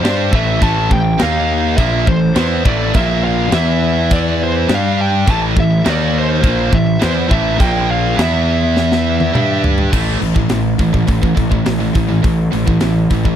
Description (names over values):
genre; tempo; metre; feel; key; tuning
heavy metal; 103 BPM; 4/4; straight; A minor; A4 = 440 Hz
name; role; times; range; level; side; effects
high-gain lead guitar; melody; 0.0-9.6 s; C5 to A5; -20 LUFS; equal; distortion
high-gain distorted guitar; riff; 0.0-13.4 s; A2 to G4; -19 LUFS; right 12 dB; distortion
scooped high-gain guitar; riff; 0.0-13.4 s; A2 to G4; -20 LUFS; left 11 dB; distortion
fuzz picked electric bass; bass; 0.0-13.3 s; A1 to G2; -18 LUFS; equal; overdrive
tight metal drum kit; drums; 0.0-13.4 s; crash cymbal, hi-hat, kick drum, snare drum, toms; -18 LUFS; equal; none
room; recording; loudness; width
studio reverb; dry, close 1970s-style studio recording; -12 LUFS; side -10 dB against mid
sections
0.0-9.9 A section; 9.9-13.4 B section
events
drum fill 8.8-9.9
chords
0.0 Am; 1.2 D#5; 1.8 A5; 2.9 Bb5; 3.5 E5; 4.7 G5; 5.3 A5; 5.9 D#5; 6.4 A5; 7.6 Bb5; 8.2 E5; 9.3 G5; 9.9 A5